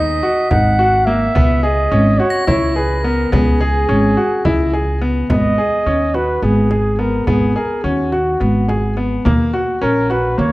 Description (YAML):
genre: contemporary instrumental, chamber music in an uneven meter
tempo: 213 BPM (eighths)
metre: 7/8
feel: straight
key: G# minor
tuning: A4 = 440 Hz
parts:
  - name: mellow flugelhorn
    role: melody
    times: 0.0-10.5 s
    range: F#4 to F#5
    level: -18 LUFS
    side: right 1 dB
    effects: none
  - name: clear baby grand piano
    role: arpeggios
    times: 0.0-10.5 s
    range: A#3 to G#4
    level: -18 LUFS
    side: left 1 dB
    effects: none
  - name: upright bass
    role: bass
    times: 0.0-10.5 s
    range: G#1 to D#2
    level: -17 LUFS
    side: equal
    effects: none
  - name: crotales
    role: texture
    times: 0.0-3.9 s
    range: A#6 to B6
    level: -31 LUFS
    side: equal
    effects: none
  - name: frame drum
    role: percussion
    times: 0.5-10.4 s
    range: none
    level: -21 LUFS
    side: equal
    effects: none
room: moderate recital hall reverb, RT60 1.5 s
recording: dark, warm production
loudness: -13 LUFS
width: side -19 dB against mid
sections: 0.0-5.3 A section; 5.3-10.5 B section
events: none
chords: 0.0 G#m7; 1.4 C#m7; 5.3 G#m7; 9.3 D#m7